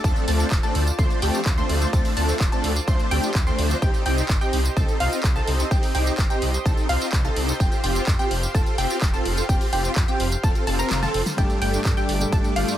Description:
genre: EDM, festival progressive house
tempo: 127 BPM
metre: 4/4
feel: straight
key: unclear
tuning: A4 = 439 Hz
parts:
  - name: lush unison pad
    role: sustained chords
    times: 0.0-12.8 s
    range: F4 to D6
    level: -32 LUFS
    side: right 1 dB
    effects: chorus, sidechain pumping
  - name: wide unison pluck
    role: arpeggios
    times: 0.0-12.7 s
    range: F5 to C6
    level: -30 LUFS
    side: equal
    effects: sidechain pumping, digital delay
  - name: supersaw chords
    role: riff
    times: 0.0-12.7 s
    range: F3 to C5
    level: -26 LUFS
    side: equal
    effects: ensemble chorus, vintage 12-bit sampler grit, sidechain pumping, digital delay
  - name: wide detuned saw bass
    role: bass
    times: 0.0-12.6 s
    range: D1 to G2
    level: -25 LUFS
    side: equal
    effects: chorus, sidechain pumping
  - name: big-room dance drum kit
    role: drums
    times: 0.0-12.8 s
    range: handclaps, hi-hat, ride cymbal, snare drum, tambourine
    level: -29 LUFS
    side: right 1 dB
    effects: none
  - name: electronic kick drum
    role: drums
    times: 0.0-12.4 s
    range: none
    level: -22 LUFS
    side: equal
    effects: none
  - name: warm concert grand piano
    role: accompaniment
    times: 11.4-12.8 s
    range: G2 to G4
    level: -27 LUFS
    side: left 1 dB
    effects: sidechain pumping, digital delay
room: little or no reverb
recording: none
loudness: -19 LUFS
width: side -12 dB against mid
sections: 0.0-12.8 A section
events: kick drops out 10.9-11.4; drum fill 10.9-11.4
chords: 0.0 Dm7; 3.8 Cm; 7.6 Fsus2; 11.4 Gsus2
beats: | 0.04 0.51 0.99 1.46 | 1.93 2.40 2.88 3.35 | 3.82 4.29 4.77 5.24 | 5.71 6.18 6.66 7.13 | 7.60 8.07 8.55 9.02 | 9.49 9.96 10.44 10.91 | 11.38 11.85 12.32

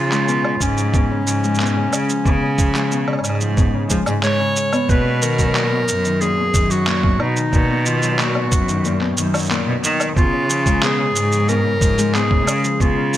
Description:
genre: folktronica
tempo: 91 BPM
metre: 4/4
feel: straight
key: unclear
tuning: A4 = 440 Hz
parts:
  - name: clear clarinet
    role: melody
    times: 0.0-13.2 s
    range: Db4 to Db5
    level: -22 LUFS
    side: equal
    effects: tape echo
  - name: Celtic harp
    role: arpeggios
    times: 0.0-13.2 s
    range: Bb2 to Cb4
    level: -22 LUFS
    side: left 4 dB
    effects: tape echo
  - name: clear cello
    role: bass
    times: 0.0-13.2 s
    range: Gb2 to F3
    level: -20 LUFS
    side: right 1 dB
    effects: tube saturation
  - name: electronic handclaps, shaker and woodblock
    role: drums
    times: 0.1-13.2 s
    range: none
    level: -24 LUFS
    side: right 1 dB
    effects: small room ambience
  - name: electronic kick drum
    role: drums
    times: 0.6-12.9 s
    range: none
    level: -18 LUFS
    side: right 1 dB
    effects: small room ambience
room: light reverb, studio ambience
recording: none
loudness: -15 LUFS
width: side -12 dB against mid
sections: 0.0-4.9 A section; 4.9-13.2 B section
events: none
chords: 0.0 Db7; 4.9 Cbmaj7; 10.2 Db7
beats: 0.28 0.94 1.59 | 2.25 2.91 3.57 4.23 | 4.89 5.55 6.21 6.87 | 7.53 8.19 8.85 9.51 | 10.17 10.83 11.48 12.14 | 12.80

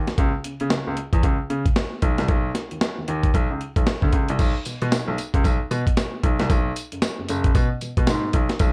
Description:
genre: R&B, new jack swing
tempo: 114 BPM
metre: 4/4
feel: swing 60% on 16ths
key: unclear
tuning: A4 = 438 Hz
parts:
  - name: clear baby grand piano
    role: bass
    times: 0.0-8.7 s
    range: F#1 to C#3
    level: -27 LUFS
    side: equal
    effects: none
  - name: breakbeat sampler-style drum kit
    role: drums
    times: 0.1-8.7 s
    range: crash cymbal, hi-hat, kick drum, snare drum, tambourine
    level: -24 LUFS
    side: equal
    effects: gated reverb
room: little or no reverb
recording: none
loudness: -22 LUFS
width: mono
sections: 0.0-4.4 A section; 4.4-8.7 B section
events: none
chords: none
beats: | 0.18 0.71 1.24 1.76 | 2.29 2.81 3.34 3.87 | 4.39 4.92 5.45 5.97 | 6.50 7.02 7.55 8.08 | 8.60

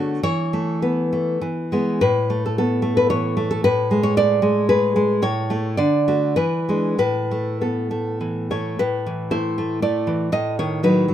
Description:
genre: romantic piece for solo classical guitar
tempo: 94-122 BPM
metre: 3/4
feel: rubato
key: A major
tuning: A4 = 441 Hz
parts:
  - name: nylon-string guitar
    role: solo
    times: 0.0-11.1 s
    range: A2 to D#5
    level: -18 LUFS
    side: equal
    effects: none
room: light reverb, small room ambience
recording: rough home demo mix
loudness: -18 LUFS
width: side -10 dB against mid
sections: 0.0-8.8 A section; 8.8-11.1 B section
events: none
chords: 0.2 Esus4; 1.4 E; 2.0 A5; 3.6 Amaj7sus2; 5.2 A; 5.8 D; 6.4 E7; 7.0 A5; 8.8 Am; 10.3 B7/A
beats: | 0.23 0.81 1.41 | 2.01 2.57 3.10 | 3.63 4.17 4.70 | 5.23 5.77 6.35 | 6.99 7.60 8.19 | 8.78 9.30 9.81 | 10.32 10.83

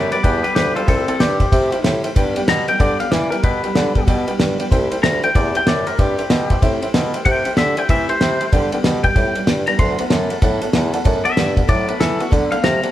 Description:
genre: rockabilly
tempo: 189 BPM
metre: 4/4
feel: swing 62% on 8ths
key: G major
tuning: A4 = 440 Hz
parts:
  - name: twangy electric guitar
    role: melody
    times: 0.0-12.9 s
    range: C4 to C6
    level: -21 LUFS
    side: left 2 dB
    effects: spring reverb
  - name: picked steel-string acoustic guitar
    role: accompaniment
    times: 0.0-12.9 s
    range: G2 to G4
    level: -26 LUFS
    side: equal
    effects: none
  - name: tack piano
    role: accompaniment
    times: 0.0-12.9 s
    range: A4 to G5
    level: -28 LUFS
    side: right 2 dB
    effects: none
  - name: warm bassoon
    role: bass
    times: 0.0-12.9 s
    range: C2 to E3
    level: -21 LUFS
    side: equal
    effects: none
  - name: cloth-damped thuddy drum kit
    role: drums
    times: 0.1-12.9 s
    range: kick drum, ride cymbal, snare drum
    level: -18 LUFS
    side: equal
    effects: none
room: moderate stone room reverb, RT60 1.1 s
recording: band playing live in one room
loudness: -15 LUFS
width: side -13 dB against mid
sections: 0.0-12.9 A section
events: none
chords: 0.0 G6; 0.9 C6; 2.2 G6; 4.7 C6; 8.5 G6; 9.8 D6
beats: 0.24 0.56 | 0.88 1.20 1.52 1.84 | 2.16 2.48 2.80 3.12 | 3.44 3.76 4.08 4.40 | 4.71 5.03 5.35 5.67 | 5.99 6.31 6.62 6.94 | 7.26 7.58 7.89 8.21 | 8.53 8.84 9.16 9.48 | 9.79 10.11 10.43 10.74 | 11.06 11.37 11.69 12.01 | 12.32 12.64

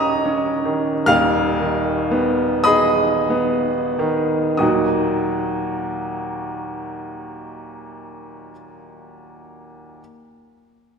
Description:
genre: classical, romantic nocturne for solo piano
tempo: 28-49 BPM (dotted quarters)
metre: 6/8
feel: rubato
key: Eb minor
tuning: A4 = 440 Hz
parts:
  - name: clear baby grand piano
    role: solo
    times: 0.0-10.0 s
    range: Eb1 to F6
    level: -18 LUFS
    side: equal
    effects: none
room: wet concert hall reverb, RT60 2.5 s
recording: none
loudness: -17 LUFS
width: side -6 dB against mid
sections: 0.0-4.6 A section; 4.6-7.8 B section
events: slowing down 0.0-4.6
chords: 0.0 Eb7; 1.1 Abm/Eb; 4.6 Ebm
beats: | 1.11 2.67 | 4.60 6.19

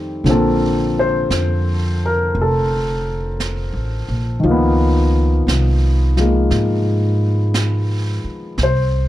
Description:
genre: jazz ballad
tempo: 58 BPM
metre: 4/4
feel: swing 68% on 8ths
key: Bb major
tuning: A4 = 440 Hz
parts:
  - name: warm upright piano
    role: accompaniment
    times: 0.0-9.1 s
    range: D3 to C5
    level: -18 LUFS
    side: left 1 dB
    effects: none
  - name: upright bass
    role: bass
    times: 0.0-9.1 s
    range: F1 to Ab2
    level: -18 LUFS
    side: equal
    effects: none
  - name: jazz brush drum kit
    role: drums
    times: 0.3-9.1 s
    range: brushed snare drum, hi-hat, snare drum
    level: -28 LUFS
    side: right 3 dB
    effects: none
room: light reverb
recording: dark, warm production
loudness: -15 LUFS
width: side -14 dB against mid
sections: 0.3-9.1 A section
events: none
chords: 0.3 Bbmaj9; 4.4 Db13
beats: | 0.26 1.31 2.36 3.40 | 4.44 5.48 6.51 7.55 | 8.58

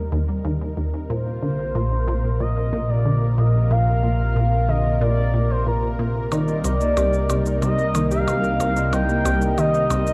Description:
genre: ambient, sequencer-driven space music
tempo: 92 BPM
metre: 4/4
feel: straight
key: unclear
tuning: A4 = 439 Hz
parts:
  - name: expressive portamento lead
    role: melody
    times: 0.0-10.1 s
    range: Bb4 to G5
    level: -27 LUFS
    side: equal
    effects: analog chorus, tape echo
  - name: lush unison pad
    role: sustained chords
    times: 0.0-10.1 s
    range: C3 to Bb4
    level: -31 LUFS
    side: equal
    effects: chorus
  - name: resonant blip pluck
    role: riff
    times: 0.0-10.1 s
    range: C2 to Eb3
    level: -26 LUFS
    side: equal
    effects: chorus, tape echo
  - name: analog drone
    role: bass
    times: 0.0-10.1 s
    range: Bb1 to Eb2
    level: -25 LUFS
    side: equal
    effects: chorus
  - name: Celtic harp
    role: arpeggios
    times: 6.3-10.1 s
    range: Bb3 to Eb5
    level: -29 LUFS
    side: equal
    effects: tape echo
  - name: shaker and percussion blips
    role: percussion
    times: 6.3-10.1 s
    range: none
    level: -34 LUFS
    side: equal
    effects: tape echo
room: moderate plate reverb, RT60 2.5 s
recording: dark, warm production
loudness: -21 LUFS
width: mono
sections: 0.0-10.1 A section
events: fade-in on analog synth pad 0.0-10.1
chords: 0.0 Eb6; 1.1 Bbsus2; 6.3 Cm7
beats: 0.45 | 1.10 1.75 2.40 3.06 | 3.71 4.36 5.01 5.67 | 6.32 6.97 7.62 8.27 | 8.93 9.58

